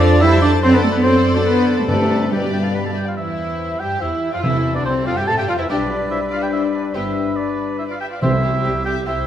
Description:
quick classical-period movement for symphony orchestra; 142 BPM; 3/4; straight; C major; A4 = 440 Hz
rich studio violin section; melody; 0.0-9.1 s; C4 to A5; -29 LUFS; left 4 dB
bright clarinet; second line; 0.0-9.3 s; C4 to C5; -31 LUFS; left 2 dB
mellow hollow concert flute; second line; 0.0-9.3 s; C5 to E6; -31 LUFS; left 2 dB
warm oboe; second line; 0.0-9.3 s; G4 to B5; -25 LUFS; right 1 dB
warm studio violin section; second line; 0.0-9.3 s; G4 to G5; -30 LUFS; left 5 dB
rich studio viola section; accompaniment; 0.0-9.1 s; G3 to D5; -26 LUFS; equal
mellow French horn section; sustained chords; 0.0-8.4 s; B2 to D4; -24 LUFS; left 5 dB
dark studio double bass section; bass; 0.0-9.3 s; G1 to A2; -23 LUFS; right 2 dB
warm studio cello section; bass; 0.0-9.3 s; G3 to B4; -20 LUFS; right 1 dB
timpani; percussion; 1.9-5.0, 8.2-8.8 s; G2 to C3; -23 LUFS; equal
mellow trumpet; stabs; 3.2-8.4 s; B4 to A5; -27 LUFS; right 1 dB
wet scoring stage reverb, RT60 1.8 s; -16 LUFS; side -10 dB against mid
0.0-3.2 A section; 3.2-9.3 B section
0.0 Dm7/F; 0.6 D7/F#; 1.9 G; 3.2 C/E; 4.4 Dm7; 5.7 G/B; 6.9 G; 8.2 C

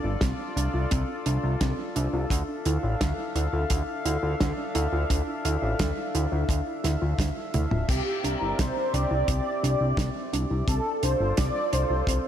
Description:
synthwave; 86 BPM; 4/4; straight; D minor; A4 = 441 Hz
chorused pulse-width pad; sustained chords; 0.0-12.3 s; C4 to F5; -33 LUFS; left 2 dB; sidechain pumping
warbly dusty pluck; arpeggios; 0.0-12.2 s; C4 to F4; -33 LUFS; right 2 dB; chorus, tape echo, slapback echo
fat analog bass; bass; 0.0-12.2 s; D1 to D2; -27 LUFS; equal
damped 70s drum kit; drums; 0.2-12.2 s; crash cymbal, hi-hat, snare drum, toms; -32 LUFS; right 2 dB; studio reverb
kick drum; drums; 0.2-12.2 s; -28 LUFS; equal; studio reverb
wide unison lead; melody; 7.9-12.3 s; G4 to D5; -28 LUFS; equal; ensemble chorus, cassette tape, digital delay, slapback echo
moderate lush hall reverb, RT60 2.7 s; big arena sound; -24 LUFS; side -10 dB against mid
0.0-12.3 A section
drum fill 7.5-7.9
0.0 F6; 2.3 Dmadd9; 7.9 Cadd9; 10.7 F6

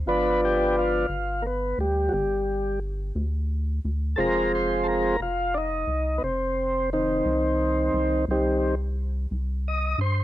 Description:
slow blues; 58 BPM (dotted quarters); 12/8; straight; A4 = 442 Hz
rubbery square bass; bass; 0.0-10.2 s; F1 to G2; -28 LUFS; equal
tonewheel organ; sustained chords; 0.1-10.2 s; Eb3 to Eb5; -23 LUFS; equal; slow rotary speaker, cassette tape
light reverb, digital ambience; home recording on cassette; -23 LUFS; side -14 dB against mid
0.0-10.2 A section
tonewheel organ solo 0.0-10.2
0.1 G7; 4.2 Fm; 8.3 Cm

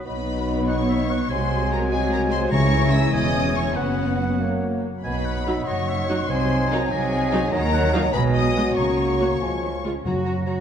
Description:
classical, dramatic, fast romantic movement for symphony orchestra; 96 BPM (dotted quarters); 6/8; rubato; B major, F# major from 7.5 s; A4 = 439 Hz
warm symphonic violin section; melody; 0.0-9.8 s; F#5 to E6; -30 LUFS; left 5 dB
clear oboe; second line; 0.0-10.6 s; C#5 to A#5; -32 LUFS; right 1 dB
mellow silver concert flute; second line; 0.0-10.6 s; F#5 to B5; -33 LUFS; left 1 dB
warm bassoon; accompaniment; 0.0-10.6 s; E3 to B3; -30 LUFS; equal
warm symphonic viola section; accompaniment; 0.0-10.6 s; F#3 to F#4; -29 LUFS; right 1 dB
mellow French horn section; sustained chords; 0.0-10.6 s; F#3 to F#4; -28 LUFS; left 4 dB
dark symphonic double bass section; bass; 0.0-10.6 s; E1 to F#2; -26 LUFS; right 3 dB
dark clarinet; second line; 0.1-10.6 s; B4 to D#5; -34 LUFS; left 2 dB
warm symphonic violin section; second line; 0.1-10.5 s; F#4 to A#5; -32 LUFS; left 4 dB
rich symphonic cello section; bass; 0.1-10.6 s; E2 to F#4; -28 LUFS; right 2 dB
timpani; percussion; 2.5-3.1, 10.1-10.6 s; F#2 to C#3; -24 LUFS; left 2 dB
wet concert hall reverb, RT60 2.3 s; dark, warm production; -19 LUFS; side -8 dB against mid
0.1-10.1 A section
0.1 B; 1.3 G#7/B#; 2.5 C#m; 3.1 C#m/E; 3.8 F#sus4; 4.4 F#; 5.0 B; 6.3 G#7/B#; 7.5 D#m7; 8.1 G#m7/B; 8.8 F#/C#; 9.4 C#; 10.1 F#

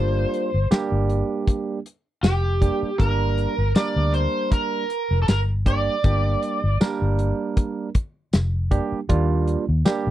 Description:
straight-eighth soul blues; 79 BPM; 4/4; swing 55% on 16ths; G minor; A4 = 443 Hz
overdriven slide guitar; melody; 0.0-6.8 s; G4 to D5; -25 LUFS; right 1 dB; slapback echo
barky tine electric piano; accompaniment; 0.0-10.1 s; G3 to Bb4; -26 LUFS; right 5 dB
vintage muted fingered electric bass; bass; 0.0-10.1 s; F1 to Eb2; -21 LUFS; equal
warm soul drum kit; drums; 0.3-10.1 s; hi-hat, kick drum, snare drum, tambourine; -19 LUFS; left 1 dB
little or no reverb; dry, close 1970s-style studio recording; -20 LUFS; side -13 dB against mid
0.0-10.1 A section
0.0 Gm; 9.1 Ebmaj7

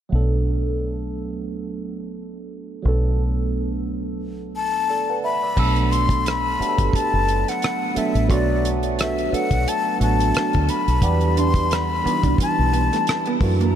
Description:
R&B, neo-soul; 88 BPM; 4/4; swing 56% on 16ths; A4 = 438 Hz
barky tine electric piano; accompaniment; 0.1-13.8 s; E3 to F#5; -24 LUFS; right 5 dB; phaser
deep dub fingered electric bass; bass; 0.1-13.8 s; F#1 to F#2; -22 LUFS; equal
breathy jazz flute; melody; 4.6-13.8 s; D5 to C6; -23 LUFS; left 5 dB; diffuse ambient delay
damped 70s drum kit; drums; 5.6-13.7 s; crash cymbal, hi-hat, kick drum, rim click; -25 LUFS; equal
electric guitar through a small old amp; second line; 11.4-13.7 s; A3 to D4; -27 LUFS; right 6 dB
moderate huge ambient reverb, RT60 5.5 s; dreamy mix soaked in reverb; -18 LUFS; side -9 dB against mid
0.1-5.6 A section; 5.6-13.8 B section
0.1 Bm7; 11.0 Em7

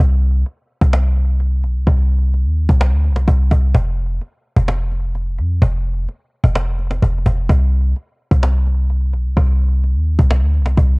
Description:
hip hop, trap; 128 BPM; 4/4; half-time; C harmonic minor; A4 = 438 Hz
warm 808-style bass; bass; 0.0-11.0 s; F1 to F2; -14 LUFS; equal
cajon; drums; 0.5-10.9 s; -19 LUFS; equal; cassette tape
studio ambience; home recording on cassette; -14 LUFS; side -35 dB against mid
0.0-11.0 A section

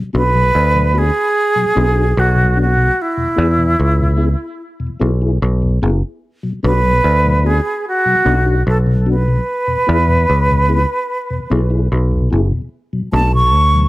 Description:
reggae; 74 BPM; 4/4; straight; B dorian; A4 = 442 Hz
mellow tonewheel organ; accompaniment; 0.0-13.8 s; E2 to G#4; -21 LUFS; left 2 dB; chorus vibrato, stopped rotary speaker, slapback echo
picked electric bass; bass; 0.1-13.9 s; F#1 to E2; -14 LUFS; equal
mellow silver concert flute; melody; 0.2-13.9 s; E4 to C#6; -16 LUFS; right 1 dB; tape echo
light reverb; -12 LUFS; side -18 dB against mid
0.0-12.7 A section; 12.7-13.9 B section
0.0 Bm; 3.0 E; 6.2 Bm; 9.5 E; 12.7 Bm

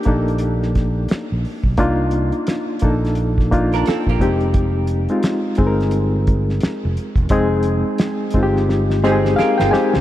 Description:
R&B, neo-soul; 87 BPM; 4/4; swing 60% on 16ths; A4 = 440 Hz
reed electric piano; accompaniment; 0.0-10.0 s; Ab3 to Ab5; -18 LUFS; left 2 dB; fast tremolo
cloth-damped thuddy drum kit; drums; 0.0-10.0 s; hi-hat, kick drum, snare drum; -21 LUFS; right 1 dB
fingered electric bass; bass; 0.1-10.0 s; E1 to C#2; -20 LUFS; right 1 dB
archtop guitar, miked and amplified; second line; 3.7-4.4, 9.0-10.0 s; Ab3 to Bb4; -25 LUFS; right 9 dB; lush chorus
light reverb; -16 LUFS; side -13 dB against mid
0.0-10.0 A section
drum fill 8.7-10.0
0.0 Cm9; 4.2 Fm9

